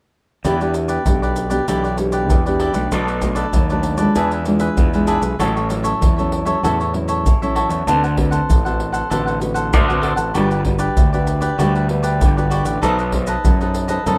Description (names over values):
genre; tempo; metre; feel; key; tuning
samba and choro; 97 BPM; 4/4; straight; E minor; A4 = 440 Hz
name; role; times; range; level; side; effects
cavaquinho; accompaniment; 0.4-14.2 s; D4 to F#5; -24 LUFS; equal; none
growling fingered electric bass; bass; 0.4-14.2 s; G1 to F#2; -24 LUFS; equal; overdrive
maracas, surdo and pandeiro; percussion; 0.4-14.2 s; none; -22 LUFS; equal; none
nylon-string guitar; accompaniment; 0.5-14.2 s; A2 to C5; -25 LUFS; equal; none
room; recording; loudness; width
moderate studio reverb, RT60 0.5 s; none; -18 LUFS; mono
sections
0.4-14.2 A section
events
none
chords
0.4 Em7; 2.9 Bm7; 4.2 E7b9; 5.4 A6; 7.9 D6; 10.4 Gmaj7; 12.8 B7b9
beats
| 0.45 1.07 1.69 2.30 | 2.92 3.54 4.16 4.78 | 5.40 6.02 6.64 7.26 | 7.88 8.49 9.11 9.73 | 10.35 10.97 11.59 12.21 | 12.83 13.45 14.06